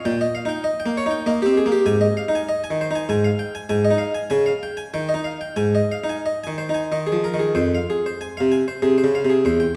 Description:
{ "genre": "classical, baroque-style suite movement for harpsichord", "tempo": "89-100 BPM", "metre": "3/4", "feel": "rubato", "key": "Ab major", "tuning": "A4 = 441 Hz", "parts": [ { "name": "harpsichord", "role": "solo", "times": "0.0-9.8 s", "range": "E2 to Ab5", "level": "-21 LUFS", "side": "equal", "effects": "none" } ], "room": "wet recital hall reverb, RT60 1.6 s", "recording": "dark, warm production", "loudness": "-21 LUFS", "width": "mono", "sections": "0.0-7.6 A section; 7.6-9.8 A section", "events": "none", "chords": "0.0 Eb/Bb; 1.9 Ab5; 3.1 Fmadd9/Ab; 3.7 Ab5; 4.3 Db; 4.9 Eb; 5.6 Ab5; 7.6 Fm" }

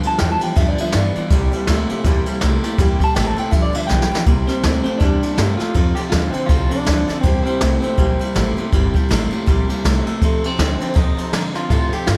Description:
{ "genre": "rockabilly", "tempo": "162 BPM", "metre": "4/4", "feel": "swing 59% on 8ths", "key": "C mixolydian", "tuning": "A4 = 439 Hz", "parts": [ { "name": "picked steel-string acoustic guitar", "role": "accompaniment", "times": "0.0-12.2 s", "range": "G2 to A4", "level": "-29 LUFS", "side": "equal", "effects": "none" }, { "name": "electric guitar through a small old amp", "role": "riff", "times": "0.0-12.2 s", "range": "F2 to A3", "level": "-26 LUFS", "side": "equal", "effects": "none" }, { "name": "upright bass", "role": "bass", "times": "0.0-12.2 s", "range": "G1 to Bb2", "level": "-23 LUFS", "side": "equal", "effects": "none" }, { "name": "jazz brush drum kit", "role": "drums", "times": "0.0-12.2 s", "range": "kick drum, ride cymbal, snare drum", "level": "-21 LUFS", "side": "equal", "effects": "none" }, { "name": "electric guitar through a small old amp", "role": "melody", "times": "0.1-12.2 s", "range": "A3 to A5", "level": "-25 LUFS", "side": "equal", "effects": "tape echo" } ], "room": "studio reverb", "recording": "none", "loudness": "-18 LUFS", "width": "mono", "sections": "0.0-4.3 A section; 4.3-12.2 B section", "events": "clean electric guitar solo 0.0-4.3; drum fill 3.9-4.3", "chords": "0.0 G7; 1.3 C7; 3.5 G7; 4.3 C7; 5.8 F7; 7.2 C7; 10.2 F7" }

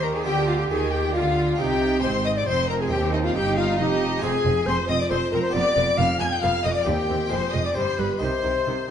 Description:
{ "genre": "classical, baroque-style concerto movement with solo episodes", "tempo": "136 BPM", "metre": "3/4", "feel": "straight", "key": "C minor", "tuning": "A4 = 440 Hz", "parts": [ { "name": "mellow tenor recorder", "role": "melody", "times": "0.0-8.9 s", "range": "Eb4 to Ab5", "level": "-26 LUFS", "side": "left 3 dB", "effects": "none" }, { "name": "rich chamber violin section", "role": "melody", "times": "0.0-8.9 s", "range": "Eb5 to Ab6", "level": "-30 LUFS", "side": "left 3 dB", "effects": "none" }, { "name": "rich chamber violin section", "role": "second line", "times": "0.0-8.9 s", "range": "Eb4 to Ab5", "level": "-28 LUFS", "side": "left 5 dB", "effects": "none" }, { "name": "harpsichord", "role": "accompaniment", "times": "0.0-8.9 s", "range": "Eb2 to Ab4", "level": "-31 LUFS", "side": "right 2 dB", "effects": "none" }, { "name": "rich chamber viola section", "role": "accompaniment", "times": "0.0-8.7 s", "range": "Eb3 to G4", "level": "-31 LUFS", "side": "right 4 dB", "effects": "none" }, { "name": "clear chamber cello section", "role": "bass", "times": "0.0-8.7 s", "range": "Eb2 to Eb3", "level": "-29 LUFS", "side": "right 3 dB", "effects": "none" }, { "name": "rich chamber double bass section", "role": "bass", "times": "0.0-8.7 s", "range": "F1 to Eb2", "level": "-28 LUFS", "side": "right 3 dB", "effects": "none" } ], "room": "wet recital hall reverb, RT60 1.5 s", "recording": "nothing above 10.9 kHz", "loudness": "-20 LUFS", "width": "side -8 dB against mid", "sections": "0.0-8.9 A section", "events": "none", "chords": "0.3 G7/D; 1.6 Cm; 4.2 Fm; 5.6 G7/F; 6.9 Cm/Eb; 7.3 Fm; 7.8 G; 8.2 Cm" }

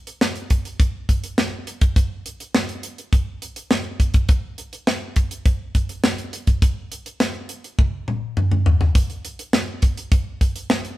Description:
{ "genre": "funk", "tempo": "103 BPM", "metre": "4/4", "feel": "straight", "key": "none", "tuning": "none", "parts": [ { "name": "tight funk drum kit", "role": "drums", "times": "0.1-11.0 s", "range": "hi-hat, kick drum, snare drum, toms", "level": "-19 LUFS", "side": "equal", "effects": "none" } ], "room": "moderate stone room reverb, RT60 1.1 s", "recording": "band playing live in one room", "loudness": "-19 LUFS", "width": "side -16 dB against mid", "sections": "0.0-9.0 A section; 9.0-11.0 B section", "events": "drum fill 7.8-9.0", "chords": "none" }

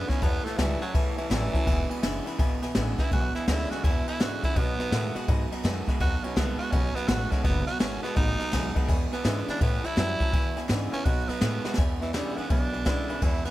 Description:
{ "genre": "rockabilly", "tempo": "166 BPM", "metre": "4/4", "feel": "swing 64% on 8ths", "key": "E major", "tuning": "A4 = 439 Hz", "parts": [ { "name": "growling tenor saxophone", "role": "melody", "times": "0.0-13.5 s", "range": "E3 to F#4", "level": "-32 LUFS", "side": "right 2 dB", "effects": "slapback echo" }, { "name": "picked steel-string acoustic guitar", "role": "accompaniment", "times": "0.0-13.5 s", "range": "E2 to F#4", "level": "-36 LUFS", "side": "left 2 dB", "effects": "none" }, { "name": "electric guitar through a small old amp", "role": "riff", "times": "0.0-13.5 s", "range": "E2 to G#3", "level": "-34 LUFS", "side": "right 3 dB", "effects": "none" }, { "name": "upright bass", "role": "bass", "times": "0.0-13.5 s", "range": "E1 to B2", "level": "-30 LUFS", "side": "equal", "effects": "none" }, { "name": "bright upright piano", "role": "accompaniment", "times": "0.1-13.5 s", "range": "B4 to A5", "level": "-40 LUFS", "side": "left 6 dB", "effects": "none" }, { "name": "jazz brush drum kit", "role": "drums", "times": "0.1-13.5 s", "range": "kick drum, ride cymbal, snare drum", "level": "-27 LUFS", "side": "equal", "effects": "none" } ], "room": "little or no reverb", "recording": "none", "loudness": "-24 LUFS", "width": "side -16 dB against mid", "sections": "0.0-11.8 A section; 11.8-13.5 B section", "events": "tenor saxophone solo 0.0-11.8; drum fill 11.6", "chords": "0.2 A7; 1.7 E7; 4.6 B7; 8.9 E7; 9.6 A7; 10.3 E7; 11.1 B7; 11.8 E7" }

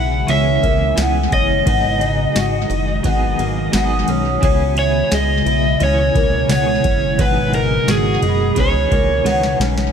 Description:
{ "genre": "dream pop", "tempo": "87 BPM", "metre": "4/4", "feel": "straight", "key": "C# dorian", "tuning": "A4 = 440 Hz", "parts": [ { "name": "overdriven slide guitar", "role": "melody", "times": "0.0-9.6 s", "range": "G#4 to F#5", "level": "-19 LUFS", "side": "right 2 dB", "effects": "tape echo" }, { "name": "clean electric guitar", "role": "accompaniment", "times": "0.0-9.9 s", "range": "G#2 to G#4", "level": "-26 LUFS", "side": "right 4 dB", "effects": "tremolo, lush chorus" }, { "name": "ethereal airy pad", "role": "sustained chords", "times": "0.0-9.9 s", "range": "B2 to F#4", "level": "-22 LUFS", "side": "equal", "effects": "ensemble chorus, built-in reverb" }, { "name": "picked twelve-string acoustic guitar", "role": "arpeggios", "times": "0.0-9.9 s", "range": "A#3 to G#4", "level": "-23 LUFS", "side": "left 7 dB", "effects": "wide subtle chorus, tape echo" }, { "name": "chorused synth bass", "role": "bass", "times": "0.0-9.9 s", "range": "F#1 to C#2", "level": "-20 LUFS", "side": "equal", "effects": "none" }, { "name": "booming analog drum machine", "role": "drums", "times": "0.3-9.9 s", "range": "kick drum, ride cymbal, snare drum, tambourine", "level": "-22 LUFS", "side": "equal", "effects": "tape echo" }, { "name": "vibraphone with medium hard mallets", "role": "texture", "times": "3.8-8.9 s", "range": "B5 to D#6", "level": "-29 LUFS", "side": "right 10 dB", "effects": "stereo widening, tape echo" } ], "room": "light reverb", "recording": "echo-heavy mix", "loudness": "-14 LUFS", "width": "side -7 dB against mid", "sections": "0.0-9.9 A section", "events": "drum fill 9.3-9.9", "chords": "0.0 C#m7; 1.7 G#m7; 4.4 C#m7; 7.2 G#m7; 8.6 C#m9" }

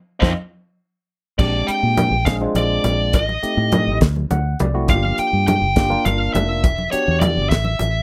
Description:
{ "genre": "electric jazz fusion", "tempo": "69 BPM (dotted quarters)", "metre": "6/8", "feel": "straight", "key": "Bb mixolydian", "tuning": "A4 = 440 Hz", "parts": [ { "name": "smooth overdriven lead guitar", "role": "melody", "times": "0.2-8.0 s", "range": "C5 to G5", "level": "-23 LUFS", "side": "equal", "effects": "none" }, { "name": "barky tine electric piano", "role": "accompaniment", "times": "0.2-7.5 s", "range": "Ab3 to F#5", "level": "-27 LUFS", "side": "equal", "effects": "subtle chorus" }, { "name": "fingered electric bass", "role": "bass", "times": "0.2-8.0 s", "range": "E1 to Bb2", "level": "-23 LUFS", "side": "equal", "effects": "none" }, { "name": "damped 70s drum kit", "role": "drums", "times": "0.2-7.9 s", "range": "crash cymbal, hi-hat, kick drum, snare drum", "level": "-21 LUFS", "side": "equal", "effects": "none" }, { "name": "congas", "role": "percussion", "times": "0.2-7.9 s", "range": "none", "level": "-26 LUFS", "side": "equal", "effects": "none" } ], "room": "little or no reverb", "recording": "none", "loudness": "-18 LUFS", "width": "mono", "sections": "0.0-1.4 A section; 1.4-8.0 B section", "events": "band accent 0.0-1.4; tine electric piano fill 4.0-4.9", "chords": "0.0 F7(no3); 1.4 Bb13; 3.1 Am7b5; 4.0 D7; 4.9 Gm7; 6.6 Em7; 7.5 A5" }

